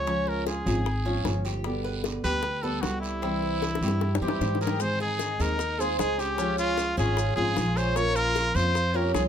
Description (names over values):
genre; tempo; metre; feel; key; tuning
latin, Cuban son and guajira; 152 BPM; 4/4; straight; unclear; A4 = 440 Hz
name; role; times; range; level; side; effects
bright trumpet; melody; 0.0-9.2 s; E4 to Db5; -29 LUFS; equal; none
nylon-string guitar; accompaniment; 0.0-9.3 s; B2 to Ab4; -32 LUFS; left 1 dB; none
Cuban tres; arpeggios; 0.0-9.3 s; C4 to Db5; -33 LUFS; right 1 dB; none
upright bass; bass; 0.0-9.3 s; G1 to Ab2; -29 LUFS; equal; none
bongos; percussion; 0.1-9.3 s; none; -33 LUFS; left 6 dB; none
guiro; percussion; 0.1-9.3 s; none; -41 LUFS; right 6 dB; none
rich studio violin section; second line; 4.2-9.2 s; Db4 to Bb4; -35 LUFS; left 1 dB; none
maracas; percussion; 4.8-9.3 s; none; -42 LUFS; left 9 dB; none
room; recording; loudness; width
moderate studio ambience, RT60 0.5 s; close, detailed microphones; -24 LUFS; side -8 dB against mid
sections
0.0-4.8 A section; 4.8-9.3 B section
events
drum fill 3.6-4.8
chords
0.1 Db; 1.7 G; 3.2 C; 4.8 Ab; 6.4 Db; 8.0 Bbm